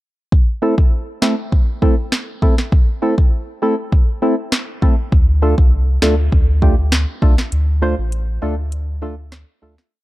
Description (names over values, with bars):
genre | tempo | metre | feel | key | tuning
dancehall | 100 BPM | 4/4 | straight | A minor | A4 = 440 Hz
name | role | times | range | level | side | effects
afro-pop drum kit | drums | 0.3-9.9 s | hi-hat, kick drum, rim click, snare drum | -14 LUFS | equal | none
percussive organ stab | accompaniment | 0.6-9.8 s | A3 to C5 | -20 LUFS | equal | chorus, sidechain pumping
warm sub bass | bass | 5.1-9.8 s | A1 to D2 | -16 LUFS | equal | none
room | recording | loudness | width
little or no reverb | dark, warm production | -14 LUFS | side -17 dB against mid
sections
0.3-9.9 verse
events
break 7.5-9.9; fade-out 7.5-9.9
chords
0.3 Am; 5.1 Dm